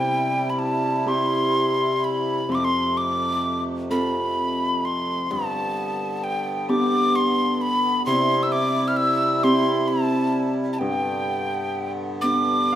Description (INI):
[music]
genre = celtic folk, Celtic slow air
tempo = 43 BPM (dotted quarters)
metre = 6/8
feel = rubato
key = G mixolydian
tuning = A4 = 441 Hz
[part]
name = breathy mellow wooden whistle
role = melody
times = 0.0-12.8 s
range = G5 to F6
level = -23 LUFS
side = equal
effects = none
[part]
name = Celtic harp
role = accompaniment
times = 0.0-12.8 s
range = F2 to F5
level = -25 LUFS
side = equal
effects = none
[part]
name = accordion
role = sustained chords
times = 0.0-12.8 s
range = F2 to E4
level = -28 LUFS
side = equal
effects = none
[sound]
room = wet recital hall reverb, RT60 1.2 s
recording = minimal, uncompressed stereo recording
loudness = -20 LUFS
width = side -11 dB against mid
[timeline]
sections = 0.0-12.8 A section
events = harp fill 12.2-12.8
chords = 0.0 C; 2.5 F; 5.3 G; 8.1 C; 10.8 G